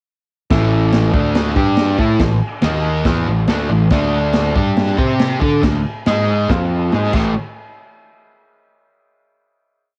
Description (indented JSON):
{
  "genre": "garage rock duo or trio",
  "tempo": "140 BPM",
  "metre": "4/4",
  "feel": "straight",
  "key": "A minor",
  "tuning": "A4 = 440 Hz",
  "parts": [
    { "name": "fuzz guitar", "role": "riff", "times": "0.5-7.3 s", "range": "A2 to D5", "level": "-19 LUFS", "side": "equal", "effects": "distortion, cassette tape" },
    { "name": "growling picked electric bass", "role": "bass", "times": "0.5-7.3 s", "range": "A1 to D3", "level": "-22 LUFS", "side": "equal", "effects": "overdrive" },
    { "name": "vintage drum kit", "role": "drums", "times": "0.5-7.2 s", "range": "crash cymbal, kick drum, snare drum", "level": "-22 LUFS", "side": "equal", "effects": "cassette tape" }
  ],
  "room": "small room ambience",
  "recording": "home recording on cassette",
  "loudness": "-16 LUFS",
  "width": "mono",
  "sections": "0.5-7.4 riff; 7.4-9.1 final hit",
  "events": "none",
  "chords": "0.5 A5; 1.1 D5; 1.6 G5; 2.0 A5; 2.6 D#5; 3.1 A5; 3.9 D5; 4.6 G5; 5.0 C5; 5.4 D5; 6.1 G#5; 6.5 F5; 6.9 G#5; 7.1 A5; 7.4 N.C."
}